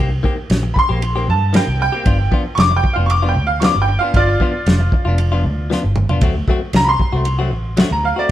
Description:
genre	straight-eighth soul blues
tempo	116 BPM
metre	4/4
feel	straight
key	G mixolydian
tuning	A4 = 440 Hz
part	bright upright piano	second line	0.0-8.3 s	F4 to D6	-18 LUFS	right 2 dB	none
part	direct-recorded clean electric guitar	stabs	0.0-8.3 s	Eb3 to G4	-24 LUFS	left 4 dB	harmonic tremolo
part	vintage muted fingered electric bass	bass	0.0-8.1 s	F1 to G2	-18 LUFS	equal	none
part	warm soul drum kit	drums	0.2-7.9 s	kick drum, ride cymbal, snare drum, toms	-18 LUFS	equal	none
room	moderate stone room reverb, RT60 1.1 s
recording	band playing live in one room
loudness	-14 LUFS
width	side -13 dB against mid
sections	0.0-8.3 A section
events	upright piano solo 0.0-8.3; drum fill 5.7-6.2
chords	0.0 Cm7; 2.1 G7; 6.2 D7

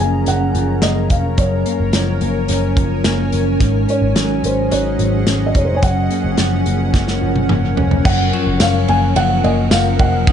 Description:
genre	dream pop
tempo	108 BPM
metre	4/4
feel	straight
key	Gb major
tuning	A4 = 440 Hz
part	felt-muted upright piano	melody	0.0-10.3 s	C5 to Ab5	-22 LUFS	right 1 dB	dub echo
part	granular cloud pad	sustained chords	0.0-10.3 s	F3 to Bb5	-22 LUFS	right 2 dB	built-in reverb
part	semi-hollow electric guitar	arpeggios	0.0-10.3 s	Gb2 to Eb4	-21 LUFS	left 4 dB	wide subtle chorus, dub echo
part	vintage muted picked electric bass	bass	0.0-10.3 s	F1 to Ab1	-19 LUFS	equal	none
part	vibraphone with hard mallets	texture	0.0-1.1, 4.7-10.3 s	Db4 to Ab4	-31 LUFS	left 1 dB	dub echo
part	loose indie drum kit	drums	0.3-10.3 s	crash cymbal, hi-hat, kick drum, ride cymbal, snare drum, tambourine, toms	-19 LUFS	equal	dub echo
room	light reverb, small room ambience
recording	echo-heavy mix, nothing above 10.4 kHz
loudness	-13 LUFS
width	side -8 dB against mid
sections	0.0-8.1 A section; 8.1-10.3 B section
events	drum fill 6.9-8.1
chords	0.0 Gbmaj7; 3.6 Ab7sus4; 5.8 Gbmaj7

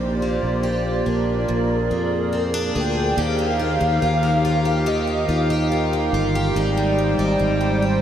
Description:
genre	dream pop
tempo	71 BPM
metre	4/4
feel	straight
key	Bb major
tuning	A4 = 440 Hz
part	warm velvety synth lead	melody	0.0-8.0 s	Bb4 to G5	-25 LUFS	equal	chorus, analog delay
part	hollow soft pad	sustained chords	0.0-8.0 s	Eb3 to G5	-23 LUFS	right 1 dB	chorus
part	picked plugged-in twelve-string acoustic guitar	arpeggios	0.0-8.0 s	Ab2 to Ab4	-25 LUFS	left 1 dB	lush chorus, analog delay
part	sustaining fretless electric bass	bass	0.0-8.0 s	G1 to F2	-24 LUFS	equal	none
part	vibraphone with medium hard mallets	texture	0.0-6.9 s	Eb4 to C5	-36 LUFS	right 2 dB	none
room	wet huge ambient reverb, RT60 7.8 s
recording	dreamy mix soaked in reverb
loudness	-18 LUFS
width	side -10 dB against mid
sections	0.0-3.2 A section; 3.2-8.0 B section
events	none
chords	0.0 Bb6; 1.5 Bb7; 3.2 Ebadd9; 6.5 Abmaj7

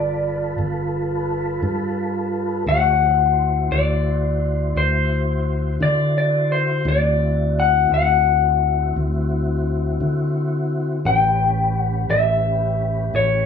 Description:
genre	slow blues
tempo	57 BPM (dotted quarters)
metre	12/8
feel	straight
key	D mixolydian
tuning	A4 = 440 Hz
part	electric guitar through a small old amp	melody	0.0-13.5 s	C5 to G5	-19 LUFS	left 4 dB	none
part	tonewheel organ	sustained chords	0.0-13.5 s	F3 to C#5	-27 LUFS	left 1 dB	slow rotary speaker, chorus vibrato
part	fingered electric bass	bass	0.0-13.5 s	G1 to D3	-21 LUFS	equal	none
room	moderate large studio reverb, RT60 0.9 s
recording	band playing live in one room, studio ambience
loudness	-17 LUFS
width	side -7 dB against mid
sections	0.0-13.5 A section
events	none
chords	0.0 G7; 2.7 D7; 11.0 A7

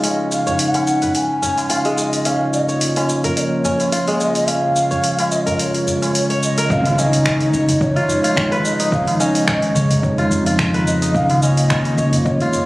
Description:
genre	organic downtempo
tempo	108 BPM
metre	4/4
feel	swing 55% on 16ths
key	Db mixolydian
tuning	A4 = 440 Hz
part	breathy mellow low ney	melody	0.0-12.7 s	Db5 to Ab5	-21 LUFS	equal	vintage 12-bit sampler grit, digital delay
part	warbly tape-like pad	sustained chords	0.0-12.7 s	Db3 to F4	-21 LUFS	equal	chorus, built-in reverb, sidechain pumping
part	kora	arpeggios	0.0-12.7 s	Ab3 to Db5	-22 LUFS	equal	low-pass filter, ping-pong delay
part	deep house drum kit	drums	0.0-12.7 s	finger snaps, hi-hat, shaker	-23 LUFS	equal	overdrive
part	tabla	percussion	0.3-12.7 s	none	-30 LUFS	equal	none
part	woody fretless electric bass	bass	6.7-12.4 s	Db2 to F2	-18 LUFS	equal	sidechain pumping
part	electronic kick drum	drums	6.7-12.4 s	none	-24 LUFS	equal	overdrive
part	impact	sound effects	6.7-8.9 s	none	-27 LUFS	equal	none
room	moderate concert hall reverb, RT60 1.9 s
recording	recorded on a phone in the room, club reverb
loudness	-15 LUFS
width	side -19 dB against mid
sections	0.0-6.7 A section; 6.7-12.7 B section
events	filter sweep on kora 0.0-6.7; filter sweep on ambient pad 0.0-6.7; impact 6.7-8.9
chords	0.0 Dbadd9; 2.3 Bbm/Db; 6.7 Dbadd9; 11.1 Bbm/Db

